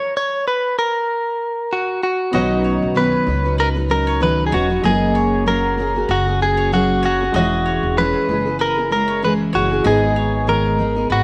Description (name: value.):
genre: acoustic pop.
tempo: 96 BPM.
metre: 4/4.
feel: swing 55% on 16ths.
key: unclear.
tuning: A4 = 442 Hz.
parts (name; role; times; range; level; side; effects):
direct-recorded clean electric guitar; melody; 0.0-11.2 s; F#4 to C#5; -21 LUFS; equal; none.
felt-muted upright piano; accompaniment; 2.3-11.2 s; G#3 to C#5; -32 LUFS; equal; none.
picked steel-string acoustic guitar; accompaniment; 2.3-11.2 s; G#2 to B4; -22 LUFS; equal; double-tracked.
bowl-back mandolin; arpeggios; 2.3-11.2 s; A#4 to D#5; -31 LUFS; equal; none.
upright bass; bass; 2.3-11.2 s; E1 to C#2; -25 LUFS; equal; tube saturation.
room: moderate echo chamber reverb, RT60 2.1 s.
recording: none.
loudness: -18 LUFS.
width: mono.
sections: 0.0-2.3 A section; 2.3-11.2 B section.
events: stop 0.0-2.3.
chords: 0.0 F#; 2.3 Badd9; 4.8 F#add9; 7.3 C#m/E; 9.9 G#m.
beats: 0.46 1.08 1.71 | 2.34 2.96 3.59 4.21 | 4.84 5.47 6.09 6.72 | 7.35 7.97 8.60 9.22 | 9.85 10.48 11.10.